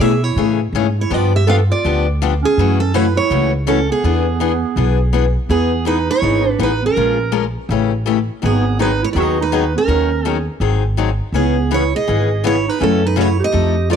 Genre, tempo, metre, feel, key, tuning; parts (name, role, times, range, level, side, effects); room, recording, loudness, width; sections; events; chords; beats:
acoustic string swing (jazz manouche); 164 BPM; 4/4; swing 62% on 8ths; E major from 5.5 s; A4 = 440 Hz
picked steel-string acoustic guitar; melody; 0.0-14.0 s; G#4 to F5; -20 LUFS; right 3 dB
growling clarinet; second line; 0.0-14.0 s; B3 to A4; -21 LUFS; right 12 dB
picked steel-string acoustic guitar; accompaniment; 0.0-14.0 s; C#3 to A#4; -20 LUFS; left 13 dB
upright bass; bass; 0.0-14.0 s; G#1 to B2; -18 LUFS; equal
light reverb, studio reverb; 1960s-style stereo with parts hard left and right; -14 LUFS; side -7 dB against mid
0.0-5.5 A section; 5.5-14.0 B section
0.0 Amaj7; 1.1 G7; 2.6 F#m7; 4.0 E7; 5.5 Emaj7; 7.0 A#m7; 7.7 A7; 8.4 G#m7; 9.9 D#m7; 10.6 G#7; 11.3 C#m7; 12.8 F#m7
0.01 0.38 0.74 | 1.11 1.48 1.84 2.21 | 2.57 2.94 3.30 3.67 | 4.03 4.40 4.77 5.13 | 5.50 5.86 6.23 6.59 | 6.96 7.33 7.69 8.06 | 8.42 8.79 9.15 9.52 | 9.89 10.25 10.62 10.98 | 11.35 11.71 12.07 12.44 | 12.80 13.17 13.53 13.90